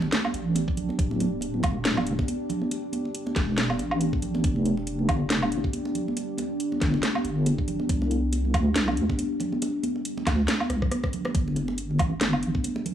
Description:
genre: deep dubstep.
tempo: 139 BPM.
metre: 4/4.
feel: swing 57% on 16ths, half-time.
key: unclear.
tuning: A4 = 438 Hz.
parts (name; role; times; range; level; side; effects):
deep dark ambient pad; sustained chords; 0.0-12.9 s; G3 to D4; -31 LUFS; equal; chorus, built-in reverb.
deep soft wobble bass; bass; 0.0-12.5 s; D1 to D2; -27 LUFS; equal; chorus.
congas; percussion; 0.0-12.9 s; none; -31 LUFS; right 2 dB; dub echo.
garage drum kit; drums; 0.1-12.9 s; hi-hat, rim click, snare drum, woodblock; -28 LUFS; equal; small room reverb.
electronic kick drum; drums; 0.7-12.6 s; none; -27 LUFS; equal; small room reverb.
room: little or no reverb.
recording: dry, gritty hardware recording, small room ambience.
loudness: -24 LUFS.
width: side -10 dB against mid.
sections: 0.0-12.9 A section.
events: drum fill 10.7-11.3.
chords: 0.0 G5; 1.0 D5; 4.4 Dmadd11/F; 7.9 C5; 11.3 G5.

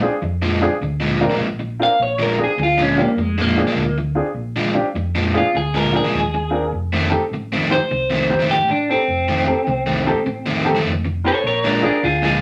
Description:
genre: blues.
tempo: 102 BPM.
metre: 4/4.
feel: swing 66% on 8ths.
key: Bb mixolydian.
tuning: A4 = 440 Hz.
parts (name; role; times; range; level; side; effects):
warm upright piano; accompaniment; 0.0-11.9 s; C4 to C5; -24 LUFS; equal; none.
overdriven semi-hollow guitar; riff; 0.0-12.4 s; F2 to D4; -24 LUFS; equal; none.
hollow-body short-scale fingered electric bass; bass; 0.0-12.4 s; F1 to F2; -27 LUFS; equal; none.
electric guitar through a small old amp; melody; 1.8-12.4 s; Ab3 to F5; -21 LUFS; equal; none.
room: wet studio reverb, RT60 0.5 s.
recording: none.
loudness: -19 LUFS.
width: mono.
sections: 0.0-12.4 A section.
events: clean electric guitar solo 0.0-12.4.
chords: 0.0 Bb7; 6.7 F7; 11.4 Bb7.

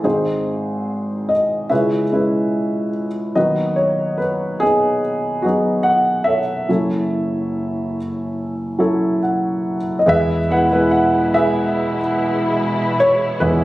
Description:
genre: acoustic folk-pop ballad.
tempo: 72 BPM.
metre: 4/4.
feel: straight.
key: E major.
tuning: A4 = 440 Hz.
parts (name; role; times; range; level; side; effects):
dark upright piano; melody; 0.0-13.6 s; F#1 to F#5; -16 LUFS; equal; slapback echo.
muted studio string section; sustained chords; 10.1-13.6 s; B2 to E4; -23 LUFS; equal; none.
vintage muted fingered electric bass; bass; 10.1-13.6 s; E2; -26 LUFS; equal; none.
room: light reverb.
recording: recorded on a phone in the room, studio reverb, compression.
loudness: -16 LUFS.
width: side -17 dB against mid.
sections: 0.0-10.1 A section; 10.1-13.6 B section.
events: upright piano fill 8.4-10.1.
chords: 0.0 G#7; 1.7 C#m7; 3.4 B/D#; 6.7 F#m7; 10.1 E.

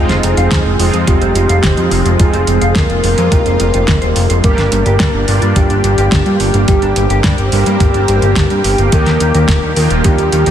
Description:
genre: synthwave.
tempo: 107 BPM.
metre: 4/4.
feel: straight.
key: unclear.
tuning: A4 = 440 Hz.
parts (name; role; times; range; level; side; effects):
soft octave-layered synth lead; melody; 0.0-10.5 s; G4 to Bb4; -17 LUFS; left 1 dB; chorus, tape echo.
lush unison pad; sustained chords; 0.0-10.5 s; Eb3 to G4; -19 LUFS; equal; chorus, phaser, sidechain pumping.
mellow electric guitar; riff; 0.0-10.5 s; G3 to F5; -23 LUFS; right 2 dB; lush chorus, ping-pong delay.
mellow synth brass; stabs; 0.0-10.5 s; G3 to Bb4; -20 LUFS; right 4 dB; chorus, ping-pong delay.
fat analog bass; bass; 0.0-10.5 s; Eb1 to G2; -14 LUFS; equal; none.
pop drum kit; drums; 0.1-10.5 s; hi-hat, snare drum; -18 LUFS; equal; studio ambience.
electronic kick drum; drums; 0.5-10.2 s; none; -14 LUFS; equal; studio ambience.
room: light reverb, digital ambience.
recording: dense, heavily limited modern master.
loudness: -10 LUFS.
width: side -10 dB against mid.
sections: 0.0-10.5 A section.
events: none.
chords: 0.0 Fm7; 4.4 Gm; 8.9 Ebmaj7.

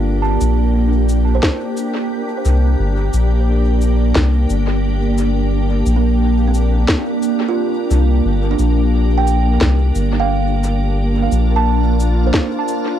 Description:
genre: ambient dub.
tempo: 88 BPM.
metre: 4/4.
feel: swing 57% on 16ths.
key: G minor.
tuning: A4 = 440 Hz.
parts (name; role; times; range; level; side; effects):
soft additive organ-like pad; sustained chords; 0.0-13.0 s; Bb3 to G4; -19 LUFS; equal; ensemble chorus, built-in reverb, cassette tape.
kalimba; arpeggios; 0.0-13.0 s; Bb3 to A5; -23 LUFS; right 11 dB; cassette tape, tape echo.
soft dub sub bass; bass; 0.0-12.3 s; G1 to C2; -15 LUFS; left 1 dB; tube saturation.
electronic cabasa and snare drum; drums; 0.4-12.8 s; none; -22 LUFS; left 1 dB; cassette tape, dub echo.
electronic kick drum; drums; 1.4-12.5 s; none; -19 LUFS; left 1 dB; cassette tape.
room: little or no reverb.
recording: home recording on cassette.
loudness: -13 LUFS.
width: side -10 dB against mid.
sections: 0.0-13.0 A section.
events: none.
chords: 0.0 Gm.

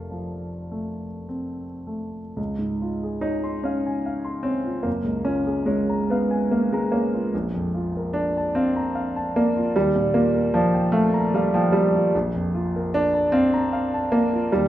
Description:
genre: classical, impressionist solo piano.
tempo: 74 BPM.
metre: 3/4.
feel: uneven beats, rubato.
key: unclear.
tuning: A4 = 440 Hz.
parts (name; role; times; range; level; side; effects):
warm grand piano; solo; 0.0-14.7 s; F1 to C6; -21 LUFS; equal; none.
room: moderate recital hall reverb, RT60 1.6 s.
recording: none.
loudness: -20 LUFS.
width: side -13 dB against mid.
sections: 0.0-2.4 A section; 2.4-14.7 B section.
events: none.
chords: 0.0 F; 2.4 Dbmaj7; 4.9 Gbmaj9; 7.3 Bbmaj7; 9.7 Ebmaj9; 12.1 Bbmaj7.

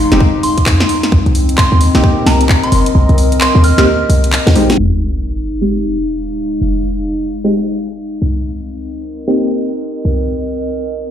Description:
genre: UK garage, two-step garage.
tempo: 131 BPM.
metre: 4/4.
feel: swing 62% on 16ths.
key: F minor.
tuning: A4 = 439 Hz.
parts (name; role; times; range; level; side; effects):
deep mellow chord stab; stabs; 0.0-11.1 s; Ab3 to G4; -16 LUFS; equal; chorus, ping-pong delay.
short 808-style bass; bass; 0.0-11.1 s; F1 to F2; -14 LUFS; equal; none.
warbly tape-like pad; texture; 0.0-11.1 s; Ab3 to F5; -18 LUFS; left 1 dB; chorus, built-in reverb, sidechain pumping.
garage drum kit; drums; 0.1-4.8 s; handclaps, hi-hat, snare drum; -17 LUFS; left 1 dB; none.
electronic kick drum; drums; 0.2-2.6 s; none; -12 LUFS; equal; none.
soft synth bell; melody; 0.4-4.0 s; Bb5 to F6; -19 LUFS; right 2 dB; chorus, ping-pong delay.
sub drop; sound effects; 4.8-6.6 s; none; -20 LUFS; equal; none.
room: light reverb, digital ambience.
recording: played on a big sound system in a bare room, stone room reverb, low-pass filter.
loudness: -11 LUFS.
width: side -9 dB against mid.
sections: 0.0-4.8 A section; 4.8-11.1 B section.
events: kick drops out 3.0-4.8; drum fill 4.4-4.8; impact 4.8-6.6; filter sweep on synth stab 4.8-11.1; filter sweep 4.8-11.1.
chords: 0.0 Fm7; 0.9 Cm7; 4.8 Fm7; 8.2 Cm7.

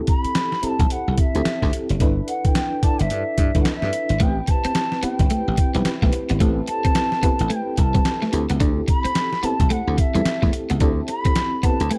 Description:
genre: R&B, new jack swing.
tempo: 109 BPM.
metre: 4/4.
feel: swing 61% on 16ths.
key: unclear.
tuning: A4 = 440 Hz.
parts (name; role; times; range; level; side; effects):
FM electric piano with tremolo; accompaniment; 0.0-12.0 s; C4 to D5; -29 LUFS; equal; none.
mellow bansuri; melody; 0.1-12.0 s; E5 to B5; -28 LUFS; equal; none.
boom bap sampler-style drum kit; drums; 0.1-12.0 s; hi-hat, kick drum, snare drum; -23 LUFS; equal; none.
dry thumbed slap bass; bass; 0.2-11.9 s; F#1 to G2; -25 LUFS; equal; none.
clean electric guitar; riff; 4.2-12.0 s; G3 to D4; -29 LUFS; equal; ensemble chorus.
room: little or no reverb.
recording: dark, warm production.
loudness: -21 LUFS.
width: mono.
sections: 0.0-12.0 A section.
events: none.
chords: 0.0 D9sus4 (rootless); 2.0 G69; 4.2 Am7; 8.3 D9sus4.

